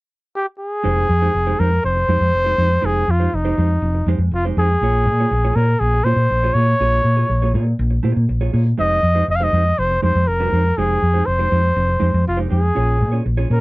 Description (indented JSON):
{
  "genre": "disco",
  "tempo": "121 BPM",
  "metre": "4/4",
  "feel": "straight",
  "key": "F minor",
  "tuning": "A4 = 438 Hz",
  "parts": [
    { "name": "breathy flugelhorn", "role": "melody", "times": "0.4-13.6 s", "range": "Eb4 to F5", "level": "-19 LUFS", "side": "equal", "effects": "none" },
    { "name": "mellow electric guitar", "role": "accompaniment", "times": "0.8-13.6 s", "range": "Ab3 to Db5", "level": "-26 LUFS", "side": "right 5 dB", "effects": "none" },
    { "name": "hollow-body short-scale fingered electric bass", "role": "bass", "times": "0.8-13.6 s", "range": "F1 to Bb2", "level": "-17 LUFS", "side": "equal", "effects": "none" }
  ],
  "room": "little or no reverb",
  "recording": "dry, close 1970s-style studio recording",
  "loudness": "-15 LUFS",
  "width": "side -21 dB against mid",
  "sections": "0.8-13.6 A section",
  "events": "none",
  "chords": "0.0 N.C.; 0.8 Fm9; 4.8 Bbm7; 8.8 Fm9; 12.8 Bbm7"
}